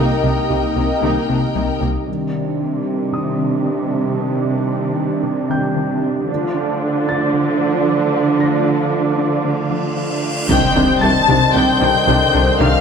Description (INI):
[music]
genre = cinematic, hybrid orchestral and electronic film score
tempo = 114 BPM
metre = 4/4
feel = straight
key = C dorian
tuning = A4 = 440 Hz
[part]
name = warm symphonic violin section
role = second line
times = 0.0-1.8, 10.5-12.8 s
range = Bb4 to A5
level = -20 LUFS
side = left 5 dB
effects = none
[part]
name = warm symphonic viola section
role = accompaniment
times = 0.0-12.7 s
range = Eb3 to Eb4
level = -24 LUFS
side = right 2 dB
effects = low-pass filter
[part]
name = brassy analog pad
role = sustained chords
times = 0.0-12.8 s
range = Eb3 to Eb5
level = -20 LUFS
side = right 1 dB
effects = chorus, low-pass filter
[part]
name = tight sequenced synth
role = arpeggios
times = 0.0-12.8 s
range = C3 to Eb4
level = -27 LUFS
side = left 3 dB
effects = none
[part]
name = smooth synth bass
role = riff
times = 0.0-2.0, 10.5-12.8 s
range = C2 to C3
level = -22 LUFS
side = left 3 dB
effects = low-pass filter
[part]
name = warm symphonic cello section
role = bass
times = 0.0-12.7 s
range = C3 to D3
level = -21 LUFS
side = right 2 dB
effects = none
[part]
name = warm symphonic double bass section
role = bass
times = 0.0-1.9, 10.5-12.7 s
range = C2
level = -23 LUFS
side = right 3 dB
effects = none
[part]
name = warm concert grand piano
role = texture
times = 0.0-12.8 s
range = G5 to Bb6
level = -30 LUFS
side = left 2 dB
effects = ping-pong delay
[part]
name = cymbal swell and impact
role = sound effects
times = 9.7-12.6 s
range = none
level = -25 LUFS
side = left 1 dB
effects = none
[part]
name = warm studio violin section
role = melody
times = 10.5-12.8 s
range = F6 to A6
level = -19 LUFS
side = left 2 dB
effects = low-pass filter
[part]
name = warm French horn section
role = sustained chords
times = 10.5-12.8 s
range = D3 to Eb3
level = -24 LUFS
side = left 5 dB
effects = low-pass filter
[sound]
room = wet scoring stage reverb, RT60 1.7 s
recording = none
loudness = -15 LUFS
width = side -6 dB against mid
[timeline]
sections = 0.0-2.1 A section; 2.1-10.5 B section; 10.5-12.8 C section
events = filter sweep 2.1-10.5; cymbal swell 9.7-10.5; impact 10.5-12.6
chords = 0.0 Eb/C; 2.1 Cmadd9; 6.3 Dm; 10.5 Cmadd9